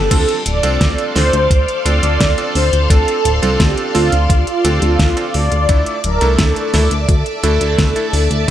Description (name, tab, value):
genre	synthwave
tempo	86 BPM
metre	4/4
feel	straight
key	D minor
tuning	A4 = 440 Hz
part	mellow synth brass	melody	0.0-8.5 s	F4 to D5	-18 LUFS	equal	chorus, cassette tape, tape echo
part	string machine, full ensemble	sustained chords	0.0-8.5 s	A4 to D6	-23 LUFS	equal	phaser, ensemble chorus, sidechain pumping
part	bright electric grand piano	stabs	0.0-8.5 s	A3 to A4	-22 LUFS	right 5 dB	none
part	chorused synth bass	bass	0.0-8.5 s	D1 to D2	-16 LUFS	equal	none
part	electronic kick drum	drums	0.1-8.5 s	none	-15 LUFS	equal	small room ambience
part	pop drum kit	drums	0.1-8.5 s	crash cymbal, hi-hat, snare drum	-20 LUFS	equal	small room ambience
room	light reverb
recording	none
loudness	-12 LUFS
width	side -11 dB against mid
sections	0.1-8.5 A section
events	band accent 0.0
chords	0.1 Dm7; 5.7 Asus4/D